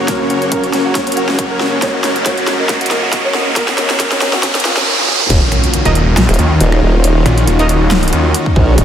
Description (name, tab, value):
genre	heavy wobble dubstep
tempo	138 BPM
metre	4/4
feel	swing 54% on 16ths, half-time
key	Eb minor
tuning	A4 = 440 Hz
part	felt-muted upright piano	melody	0.0-4.8 s	Db4 to Db5	-21 LUFS	equal	diffuse ambient delay
part	supersaw chords	sustained chords	0.0-8.8 s	Gb2 to Eb5	-19 LUFS	equal	sidechain pumping
part	riser and impact	sound effects	0.0-7.0 s	none	-19 LUFS	right 1 dB	none
part	granular cloud pad	texture	0.0-8.8 s	Db4 to Db5	-21 LUFS	equal	built-in reverb, lush chorus, sidechain pumping
part	big-room dance drum kit	drums	0.1-8.8 s	crash cymbal, finger snaps, hi-hat, snare drum, toms	-18 LUFS	equal	overdrive, high-pass filter on hats, high-pass filter on snare, high-pass filter on toms, high-pass filter on cymbals
part	electronic kick drum	drums	0.1-5.4, 8.5-8.8 s	none	-17 LUFS	equal	none
part	formant-sweep wobble bass	bass	5.3-8.8 s	Eb1 to Bb1	-12 LUFS	equal	chorus, overdrive
part	orchestra-hit-like synth stab	stabs	5.9-7.7 s	Eb4 to Eb5	-23 LUFS	right 2 dB	none
part	snarling distorted saw bass	bass	5.9-8.3 s	Eb1 to Eb2	-12 LUFS	equal	distortion, overdrive
room	wet huge ambient reverb, RT60 7.2 s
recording	dreamy mix soaked in reverb, high-pass filter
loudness	-11 LUFS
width	side -9 dB against mid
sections	0.0-5.3 A section; 5.3-8.8 B section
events	build-up 0.0-5.3; drum fill 0.0-4.9, 5.0-5.3; riser 0.0-5.3; filter sweep 0.0-5.3; drop 5.3-8.8; impact 5.3-7.0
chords	0.0 Gb; 5.3 Ebm7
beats	| 0.08 0.52 0.95 1.39 | 1.82 2.26 2.69 3.13 | 3.56 4.00 4.43 4.87 | 5.30 5.74 6.17 6.61 | 7.04 7.47 7.91 8.34 | 8.78